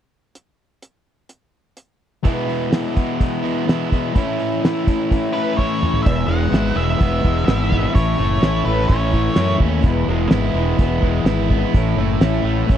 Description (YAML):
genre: classic rock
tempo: 126 BPM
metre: 4/4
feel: straight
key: E major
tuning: A4 = 440 Hz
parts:
  - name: cloth-damped thuddy drum kit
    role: drums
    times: 0.4-12.8 s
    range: crash cymbal, hi-hat, kick drum, snare drum, toms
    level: -17 LUFS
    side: equal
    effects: none
  - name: picked old ladder-braced acoustic guitar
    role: accompaniment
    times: 2.2-12.8 s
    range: E2 to E4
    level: -27 LUFS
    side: right 4 dB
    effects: none
  - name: crunchy overdriven guitar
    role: riff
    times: 2.2-12.8 s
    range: E2 to E4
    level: -25 LUFS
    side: right 12 dB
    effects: none
  - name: sludgy distorted guitar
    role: riff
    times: 2.2-12.8 s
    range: E2 to E4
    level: -23 LUFS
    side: left 11 dB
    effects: overdrive
  - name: octave-fuzz lead guitar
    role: melody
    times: 5.3-9.6 s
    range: B4 to F#5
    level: -24 LUFS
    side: left 1 dB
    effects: distortion, slapback echo
  - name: fuzz fingered electric bass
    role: bass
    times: 6.1-12.8 s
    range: E1 to F#2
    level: -20 LUFS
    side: equal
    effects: overdrive
room: little or no reverb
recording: dry, close 1970s-style studio recording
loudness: -16 LUFS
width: side -10 dB against mid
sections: 0.4-2.2 A section; 2.2-6.0 B section; 6.0-12.8 C section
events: drum fill 5.6-6.0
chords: 0.4 N.C.; 2.2 E; 4.1 A; 6.0 E; 7.9 A; 9.8 E; 11.7 A